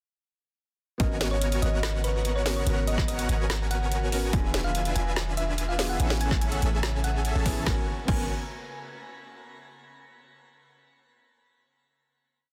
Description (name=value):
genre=future bass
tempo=144 BPM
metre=4/4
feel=half-time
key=unclear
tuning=A4 = 441 Hz
part: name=thumb-piano-like synth pluck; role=melody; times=1.0-8.2 s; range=B4 to G#5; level=-37 LUFS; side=equal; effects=chorus, sidechain pumping, tape echo
part: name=felt-muted upright piano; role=accompaniment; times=1.0-8.3 s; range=B3 to G#5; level=-40 LUFS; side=equal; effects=sidechain pumping, tape echo
part: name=airy breathy pad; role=sustained chords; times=1.0-7.9 s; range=C#3 to E5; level=-44 LUFS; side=equal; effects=none
part: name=supersaw chords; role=riff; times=1.0-8.2 s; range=B3 to A5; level=-37 LUFS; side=equal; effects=sidechain pumping
part: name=warm 808-style bass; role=bass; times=1.0-8.3 s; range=E1 to A1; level=-30 LUFS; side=equal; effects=sidechain pumping
part: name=electronic kick drum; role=drums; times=1.0-8.2 s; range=none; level=-31 LUFS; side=equal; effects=overdrive
part: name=trap drum kit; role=drums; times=1.0-8.2 s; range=crash cymbal, hi-hat, snare drum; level=-36 LUFS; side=equal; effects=none
room=light reverb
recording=dense, heavily limited modern master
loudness=-27 LUFS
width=mono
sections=1.0-7.7 drop; 7.7-9.3 final chord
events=drop 1.0-7.7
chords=1.0 G#m11; 4.3 E7b9; 6.0 Amaj7; 7.7 G#m11